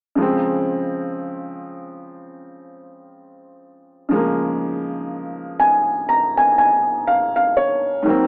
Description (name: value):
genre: R&B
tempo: 61 BPM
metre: 4/4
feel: swing 58% on 16ths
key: unclear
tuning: A4 = 441 Hz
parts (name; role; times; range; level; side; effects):
- felt-muted upright piano; accompaniment; 0.2-8.3 s; Ab2 to Bb5; -20 LUFS; equal; cassette tape
room: moderate small room reverb, RT60 0.5 s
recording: home recording on cassette, AM radio sound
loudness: -19 LUFS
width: mono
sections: 0.2-8.3 A section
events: felt piano fill 5.1-8.1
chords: 0.2 Bbm9